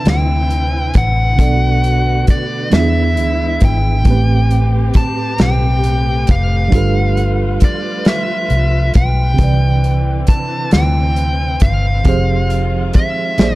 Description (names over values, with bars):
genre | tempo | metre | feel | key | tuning
slow six-eight R&B | 45 BPM (dotted quarters) | 6/8 | straight | C major | A4 = 443 Hz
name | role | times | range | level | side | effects
dark smooth lead guitar | melody | 0.0-13.6 s | D5 to A5 | -20 LUFS | equal | overdrive
tine electric piano | accompaniment | 0.0-13.6 s | A2 to E5 | -20 LUFS | right 4 dB | overdrive, medium tremolo
dark studio string section | sustained chords | 0.0-13.6 s | D3 to B4 | -26 LUFS | left 3 dB | none
vintage muted fingered electric bass | bass | 0.1-13.6 s | F1 to E2 | -15 LUFS | equal | none
warm soul drum kit | drums | 0.1-13.6 s | hi-hat, kick drum, snare drum | -13 LUFS | equal | none
room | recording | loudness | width
small room ambience | none | -12 LUFS | side -18 dB against mid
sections
0.0-13.6 A section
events
none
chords
0.0 Cmaj9; 1.4 Bm7; 2.7 E7; 4.1 Am9; 6.7 G13; 9.4 Cmaj9; 12.1 Fm7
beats
0.06 | 1.39 2.73 | 4.06 5.39 | 6.72 8.06 | 9.39 10.72 | 12.06 13.39